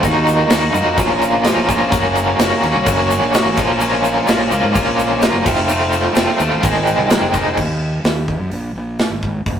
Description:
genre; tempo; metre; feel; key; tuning
indie rock; 127 BPM; 4/4; straight; Bb minor; A4 = 440 Hz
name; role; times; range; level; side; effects
soft string machine; sustained chords; 0.0-7.6 s; Eb4 to Eb6; -30 LUFS; equal; none
overdriven electric guitar; riff; 0.0-7.6 s; Eb3 to Gb4; -15 LUFS; equal; tremolo
fuzz fingered electric bass; bass; 0.0-9.6 s; F1 to Ab2; -21 LUFS; equal; overdrive
big rock drum kit; drums; 0.0-9.6 s; crash cymbal, hi-hat, kick drum, snare drum; -19 LUFS; equal; none
tube shaker; percussion; 0.0-7.5 s; none; -34 LUFS; left 6 dB; none
room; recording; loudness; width
moderate stone room reverb, RT60 1.0 s; rough rehearsal-room recording, tube saturation; -13 LUFS; side -9 dB against mid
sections
0.0-7.6 A section; 7.6-9.6 B section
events
none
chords
0.0 Ebmadd9; 1.0 Bbm7; 1.9 Gb; 3.6 Bbm7; 5.5 F; 6.6 Ab; 7.6 N.C.; 8.5 Absus2

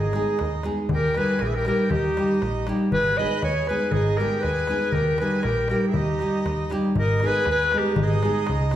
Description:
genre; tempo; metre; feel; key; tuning
balkan folk, Balkan wedding band; 119 BPM; 2/4; straight; G# harmonic minor; A4 = 438 Hz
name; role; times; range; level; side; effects
mellow clarinet; melody; 0.0-8.8 s; G4 to D#5; -24 LUFS; left 1 dB; none
accordion; second line; 0.0-8.8 s; D#4 to B4; -32 LUFS; right 4 dB; none
plucky analog bass; bass; 0.0-8.8 s; G#1 to D#2; -27 LUFS; equal; none
darbuka; percussion; 0.0-8.8 s; none; -30 LUFS; left 2 dB; none
nylon-string guitar; accompaniment; 0.1-8.8 s; G3 to G#4; -27 LUFS; equal; none
room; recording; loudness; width
wet recital hall reverb, RT60 1.2 s; recorded in a church or concert hall; -20 LUFS; side -12 dB against mid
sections
0.9-8.8 A section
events
none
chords
0.0 G#m; 0.9 D#; 2.9 G#m; 4.9 D#; 7.0 G#m

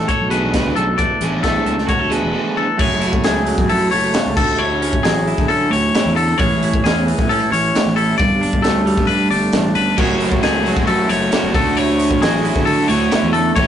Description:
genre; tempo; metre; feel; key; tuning
math rock and midwest emo; 134 BPM; 4/4; straight; unclear; A4 = 440 Hz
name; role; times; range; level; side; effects
clean electric guitar; accompaniment; 0.0-13.7 s; F#2 to B4; -20 LUFS; right 3 dB; none
twangy electric guitar; arpeggios; 0.0-13.7 s; G#4 to D5; -19 LUFS; left 4 dB; none
fuzz fingered electric bass; bass; 0.0-13.7 s; E1 to D3; -22 LUFS; equal; overdrive
crisp fusion drum kit; drums; 0.1-13.7 s; crash cymbal, hi-hat, kick drum, snare drum; -20 LUFS; equal; none
raw garage guitar; riff; 0.3-2.6, 10.0-13.7 s; A2 to G#4; -21 LUFS; right 2 dB; overdrive
room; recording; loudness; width
wet small room reverb, RT60 0.5 s; rough rehearsal-room recording, warm saturation, nothing above 10.7 kHz; -14 LUFS; side -9 dB against mid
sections
0.0-2.8 A section; 2.8-13.7 B section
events
none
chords
0.0 E7sus4; 2.8 F#m9; 4.4 Dmaj9; 6.4 Amaj7; 8.2 Gadd9; 10.0 F#m9; 11.6 Dmaj9

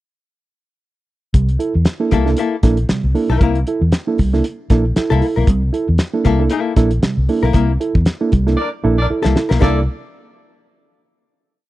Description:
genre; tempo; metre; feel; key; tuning
funk; 116 BPM; 4/4; swing 56% on 16ths; C mixolydian; A4 = 440 Hz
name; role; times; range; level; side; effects
reed electric piano; stabs; 1.3-9.8 s; C3 to A4; -19 LUFS; right 4 dB; none
vintage muted fingered electric bass; bass; 1.3-9.9 s; Bb1 to E2; -16 LUFS; equal; none
cloth-damped thuddy drum kit; drums; 1.3-9.8 s; hi-hat, kick drum, snare drum; -16 LUFS; equal; none
archtop guitar, miked and amplified; accompaniment; 2.1-9.8 s; Bb3 to Bb4; -19 LUFS; left 6 dB; none
mellow horn section; second line; 8.6-9.8 s; Bb3 to D5; -23 LUFS; left 1 dB; none
room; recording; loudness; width
studio reverb; dry, close 1970s-style studio recording; -14 LUFS; side -16 dB against mid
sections
1.3-9.6 groove; 9.6-11.7 final chord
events
band accent 7.5-9.6; drum fill 8.6-9.6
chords
1.3 C13

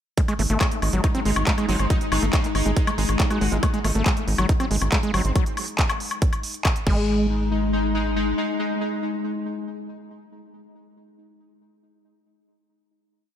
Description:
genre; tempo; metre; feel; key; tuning
psychedelic trance; 139 BPM; 4/4; straight; unclear; A4 = 443 Hz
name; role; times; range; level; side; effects
pulsing gated texture; sustained chords; 0.5-9.9 s; G#3 to D#4; -27 LUFS; left 2 dB; chorus, built-in reverb, sidechain pumping
overdriven acid bass; riff; 0.2-7.3 s; F#3 to D#4; -26 LUFS; equal; distortion, auto-pan, sidechain pumping, ping-pong delay
big-room dance drum kit; drums; 0.2-7.0 s; crash cymbal, handclaps, hi-hat, woodblock; -27 LUFS; left 1 dB; studio reverb
electronic kick drum; drums; 0.2-7.0 s; none; -22 LUFS; equal; studio reverb
tight sequencer bass; bass; 0.4-8.3 s; G#1; -24 LUFS; equal; tube saturation
metallic wobble bass; second line; 1.7-5.3 s; G#3 to F#4; -37 LUFS; right 2 dB; ensemble chorus, cassette tape, sidechain pumping, high-pass filter, analog delay
room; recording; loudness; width
moderate plate reverb, RT60 1.7 s; dreamy mix soaked in reverb; -20 LUFS; side -10 dB against mid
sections
0.2-7.1 drop; 7.1-10.5 final hit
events
drop 0.2-7.1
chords
0.2 G#5

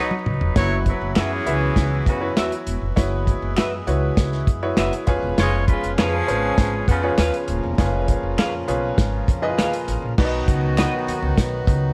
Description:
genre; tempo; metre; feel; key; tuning
uptempo 1960s-style soul; 100 BPM; 4/4; straight; unclear; A4 = 440 Hz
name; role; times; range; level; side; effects
clear horn section; second line; 0.0-11.9 s; C#3 to C#5; -27 LUFS; equal; none
clear baby grand piano; accompaniment; 0.0-11.2 s; B2 to E5; -29 LUFS; equal; none
electric guitar through a small old amp; stabs; 0.0-10.9 s; F#4 to E#5; -30 LUFS; equal; lush chorus
warm soul drum kit; drums; 0.1-11.8 s; crash cymbal, hi-hat, kick drum, snare drum, toms; -23 LUFS; equal; none
upright bass; bass; 0.3-11.9 s; D#1 to F#2; -27 LUFS; equal; none
hand-pumped harmonium; sustained chords; 0.6-11.9 s; A#2 to B3; -32 LUFS; equal; none
finger snap; percussion; 1.2-10.9 s; none; -36 LUFS; equal; none
room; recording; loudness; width
small room ambience; vinyl crackle; -21 LUFS; mono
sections
0.6-10.2 A section; 10.2-11.9 B section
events
drum fill 0.0-0.6; band accent 0.0-0.6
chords
0.0 B; 0.6 F#7sus4; 5.1 C#7; 10.2 B

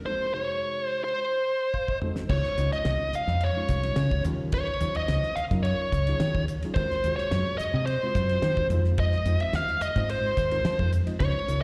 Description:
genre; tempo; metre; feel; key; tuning
electric jazz fusion; 108 BPM; 4/4; straight; Db major; A4 = 440 Hz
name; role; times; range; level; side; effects
bluesy overdriven lead guitar; melody; 0.1-11.6 s; C5 to F5; -30 LUFS; equal; distortion
reed electric piano; accompaniment; 0.1-11.6 s; C3 to F5; -38 LUFS; equal; none
damped 70s drum kit; drums; 1.7-11.6 s; crash cymbal, hi-hat, kick drum, ride cymbal, snare drum, toms; -36 LUFS; equal; none
fingered electric bass; bass; 2.3-11.6 s; C2 to F3; -29 LUFS; equal; none
room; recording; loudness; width
light reverb, studio reverb; live gig heard through the venue's PA, recital hall reverb; -26 LUFS; mono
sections
0.0-2.3 A section; 2.3-11.6 B section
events
break 0.1-2.3; reed electric piano fill 1.5-2.3; drum fill 1.7-2.3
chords
0.1 Ab7b9; 2.3 Dbmaj9; 4.3 Ebm9; 6.8 Ab13/Eb; 8.7 Fm7

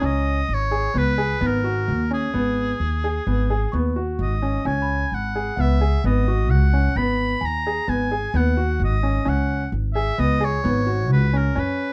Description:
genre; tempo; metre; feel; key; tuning
contemporary instrumental, chamber music in an uneven meter; 130 BPM; 5/4; straight; unclear; A4 = 440 Hz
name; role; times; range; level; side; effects
bright oboe; melody; 0.0-11.9 s; G#4 to B5; -29 LUFS; equal; none
clear grand piano; arpeggios; 0.0-11.9 s; B3 to G#4; -27 LUFS; equal; none
upright bass; bass; 0.0-11.9 s; G#1 to F#2; -24 LUFS; equal; none
celesta; texture; 0.0-0.2, 3.7-8.8 s; F#5 to C#6; -39 LUFS; equal; none
room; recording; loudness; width
light reverb; dark, warm production; -21 LUFS; mono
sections
0.0-11.9 A section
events
none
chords
0.0 G#m7; 4.7 C#7sus4; 7.0 G#m7; 9.3 C#7sus4

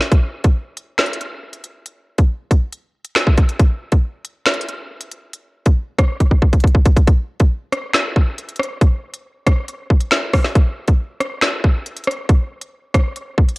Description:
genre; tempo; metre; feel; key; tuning
hip hop; 138 BPM; 4/4; half-time; none; none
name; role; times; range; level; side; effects
drill drum kit; drums; 0.0-13.6 s; finger snaps, hi-hat, kick drum, rim click, snare drum; -14 LUFS; equal; cassette tape
room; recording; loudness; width
light reverb, digital ambience; home recording on cassette; -15 LUFS; side -25 dB against mid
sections
0.0-7.1 A section; 7.1-13.6 B section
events
drum fill 6.2-7.1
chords
none

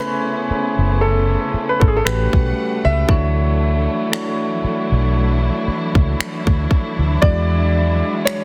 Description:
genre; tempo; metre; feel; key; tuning
contemporary R&B; 58 BPM; 4/4; swing 54% on 16ths; A major; A4 = 444 Hz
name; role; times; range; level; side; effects
clear concert grand piano; melody; 0.0-8.4 s; G#4 to E5; -25 LUFS; equal; delay
soft electric-piano-like synth keys; accompaniment; 0.0-8.4 s; G#3 to G#5; -25 LUFS; equal; chorus, tremolo
warm studio string section; sustained chords; 0.0-8.4 s; C#3 to F#5; -28 LUFS; equal; none
trap drum kit; drums; 0.0-8.4 s; finger snaps, kick drum; -20 LUFS; equal; soft clipping on snare
vintage muted fingered electric bass; bass; 0.5-8.0 s; F#1 to E2; -20 LUFS; equal; none
room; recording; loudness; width
small room reverb; dense, heavily limited modern master; -18 LUFS; mono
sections
0.0-8.4 A section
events
none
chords
0.0 Amaj9; 2.1 A13; 3.1 Dmaj9; 7.2 E13

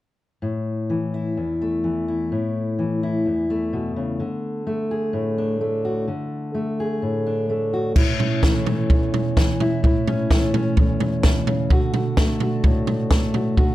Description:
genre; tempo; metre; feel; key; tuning
indie folk with a building arrangement; 128 BPM; 4/4; straight; A major; A4 = 440 Hz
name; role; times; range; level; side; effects
fingerpicked steel-string acoustic guitar; accompaniment; 0.4-13.7 s; E2 to G#4; -22 LUFS; left 2 dB; none
compact cocktail drum kit; drums; 8.0-13.7 s; crash cymbal, kick drum, snare drum, toms; -18 LUFS; right 1 dB; none
room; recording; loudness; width
light reverb; none; -19 LUFS; side -15 dB against mid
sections
0.4-8.0 A section; 8.0-13.7 B section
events
none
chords
0.4 A5; 4.2 D5; 8.0 A; 11.7 D

